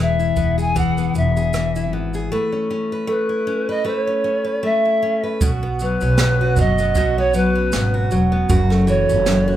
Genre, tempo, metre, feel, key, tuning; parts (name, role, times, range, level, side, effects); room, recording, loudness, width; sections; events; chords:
acoustic pop; 78 BPM; 4/4; swing 55% on 16ths; A4 = 441 Hz
polished pan flute; melody; 0.0-9.6 s; B4 to G#5; -20 LUFS; equal
picked steel-string acoustic guitar; accompaniment; 0.0-9.6 s; F#2 to B4; -20 LUFS; left 2 dB
upright bass; bass; 0.0-9.6 s; E1 to B1; -21 LUFS; right 1 dB
jazz brush drum kit; drums; 0.2-9.5 s; kick drum, rim click, shaker, snare drum; -22 LUFS; right 2 dB
light reverb; band playing live in one room; -16 LUFS; side -12 dB against mid
0.0-5.4 A section; 5.4-9.6 B section
0.0 E; 2.3 Aadd9; 5.4 Bsus2; 8.5 F#m7